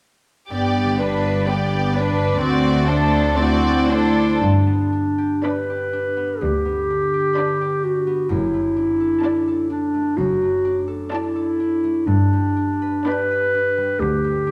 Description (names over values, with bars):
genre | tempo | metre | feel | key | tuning
classical, slow romantic movement for symphony orchestra | 62 BPM | 4/4 | uneven beats, rubato | G major | A4 = 440 Hz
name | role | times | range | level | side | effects
clear studio violin section | melody | 0.5-13.8 s | B4 to B5 | -31 LUFS | equal | none
warm studio violin section | second line | 0.5-13.8 s | F#4 to D5 | -28 LUFS | equal | none
warm studio viola section | accompaniment | 0.5-13.8 s | B3 to D4 | -25 LUFS | equal | none
concert harp | arpeggios | 0.5-14.5 s | F#2 to B4 | -30 LUFS | equal | none
dark studio double bass section | bass | 0.5-14.5 s | F#1 to D2 | -28 LUFS | equal | none
warm studio cello section | bass | 0.5-14.5 s | D2 to G2 | -25 LUFS | equal | none
mellow clarinet | second line | 3.4-14.5 s | D4 to B4 | -22 LUFS | equal | none
room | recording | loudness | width
moderate scoring stage reverb, RT60 1.7 s | none | -20 LUFS | mono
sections
0.5-4.4 A section; 4.4-14.5 B section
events
none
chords
0.5 G; 2.4 D7; 4.4 G; 8.3 D/F#; 12.1 G